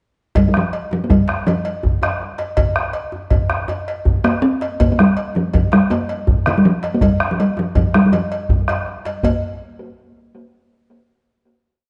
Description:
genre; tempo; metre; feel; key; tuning
west african traditional, West African drum ensemble; 108 BPM (dotted quarters); 12/8; straight; unclear; A4 = 442 Hz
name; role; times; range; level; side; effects
talking drum; melody; 0.4-9.4 s; D3 to C4; -19 LUFS; equal; tape echo
bombo; percussion; 0.4-9.4 s; none; -22 LUFS; equal; none
cowbell; percussion; 0.4-9.4 s; none; -28 LUFS; equal; none
djembe; percussion; 0.4-9.4 s; none; -25 LUFS; equal; none
room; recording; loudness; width
light reverb; nothing above 10.3 kHz; -17 LUFS; mono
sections
0.4-9.2 A section; 9.2-11.5 final note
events
none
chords
none

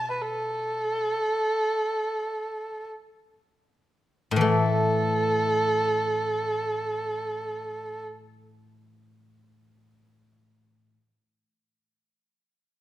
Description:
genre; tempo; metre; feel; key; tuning
chinese traditional, Chinese chamber ensemble; free time; none; none; unclear; A4 = 440 Hz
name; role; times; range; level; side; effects
dark erhu; melody; 0.0-8.0 s; A4 to A5; -26 LUFS; right 1 dB; none
guzheng; accompaniment; 0.0-11.0 s; A2 to A3; -26 LUFS; left 2 dB; none
room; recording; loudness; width
moderate recital hall reverb, RT60 1.4 s; none; -24 LUFS; side -14 dB against mid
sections
0.0-4.4 A section; 4.4-8.6 B section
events
slowing down 0.0-4.4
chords
none

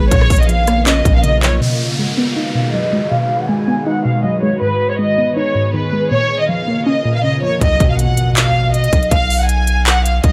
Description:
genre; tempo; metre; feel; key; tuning
hip hop, trap; 160 BPM; 4/4; half-time; unclear; A4 = 439 Hz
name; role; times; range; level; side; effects
warm studio violin section; melody; 0.0-10.3 s; Cb5 to G#5; -20 LUFS; equal; low-pass filter, tape echo
warbly dusty pluck; accompaniment; 0.0-7.6 s; Ab2 to Eb4; -20 LUFS; equal; chorus, low-pass filter
granular cloud pad; sustained chords; 0.0-7.6 s; Db3 to B4; -27 LUFS; equal; built-in reverb, low-pass filter
long sustained 808-style bass; bass; 0.0-1.6, 7.6-10.3 s; Ab1 to B2; -18 LUFS; equal; none
trap drum kit; drums; 0.1-1.5, 7.6-10.3 s; handclaps, hi-hat, kick drum, rim click; -17 LUFS; equal; none
downlifter and impact; sound effects; 1.6-4.6, 7.6-9.1 s; none; -27 LUFS; equal; none
room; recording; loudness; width
light reverb; none; -15 LUFS; mono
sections
0.0-1.6 A section; 1.6-7.6 B section; 7.6-10.3 C section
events
filter sweep 1.6-7.6; impact 7.6-9.1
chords
0.1 Bbm; 1.6 B6; 4.6 Abm; 6.1 Bbm; 7.6 B

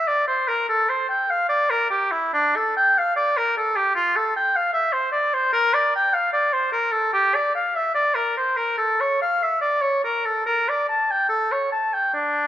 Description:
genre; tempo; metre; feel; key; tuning
classical, baroque-style fantasia for unaccompanied oboe; 73 BPM; 4/4; uneven beats, rubato; unclear; A4 = 440 Hz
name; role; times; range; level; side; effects
warm oboe; solo; 0.0-12.5 s; D4 to A5; -19 LUFS; equal; none
room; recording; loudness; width
moderate scoring stage reverb, RT60 1.9 s; none; -19 LUFS; side -12 dB against mid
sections
0.0-12.5 A section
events
none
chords
none

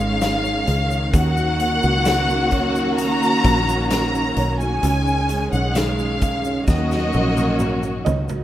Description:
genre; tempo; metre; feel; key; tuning
pop ballad; 65 BPM; 4/4; straight; Eb minor; A4 = 440 Hz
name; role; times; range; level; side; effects
warm symphonic violin section; melody; 0.0-8.0 s; Eb5 to Bb5; -22 LUFS; left 2 dB; none
felt-muted upright piano; accompaniment; 0.0-8.4 s; Db3 to Eb5; -28 LUFS; right 5 dB; none
warm studio string section; sustained chords; 0.0-8.4 s; Eb3 to Gb4; -23 LUFS; equal; none
fingered electric bass; bass; 0.0-8.4 s; Ab1 to Eb2; -23 LUFS; equal; none
tube shaker; percussion; 0.0-8.4 s; none; -40 LUFS; left 10 dB; none
huge arena drum kit; drums; 0.2-8.4 s; hi-hat, kick drum, snare drum, toms; -25 LUFS; equal; none
room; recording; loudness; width
light reverb; rough home demo mix; -17 LUFS; side -12 dB against mid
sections
0.0-8.4 A section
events
drum fill 6.7-8.4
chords
0.0 Dbsus2; 1.1 Ebm7; 4.8 Dbsus2; 6.7 Ebm7

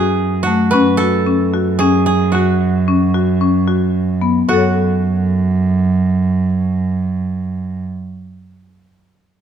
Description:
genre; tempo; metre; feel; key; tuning
contemporary instrumental, chamber music in an uneven meter; 111 BPM; 7/4; straight; F# minor; A4 = 438 Hz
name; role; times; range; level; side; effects
koto; melody; 0.0-7.8 s; F#4 to B4; -19 LUFS; right 5 dB; none
marimba with hard mallets; arpeggios; 0.0-7.9 s; A3 to F#5; -17 LUFS; left 8 dB; none
warm cello; bass; 0.0-7.8 s; F#2; -16 LUFS; right 4 dB; none
worn celesta; texture; 4.5-7.8 s; A4; -24 LUFS; left 11 dB; none
room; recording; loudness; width
moderate recital hall reverb, RT60 1.4 s; dark, warm production; -13 LUFS; side -8 dB against mid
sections
0.0-4.5 A section; 4.5-8.3 B section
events
none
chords
0.0 F#m; 0.7 F#5; 4.5 F#m

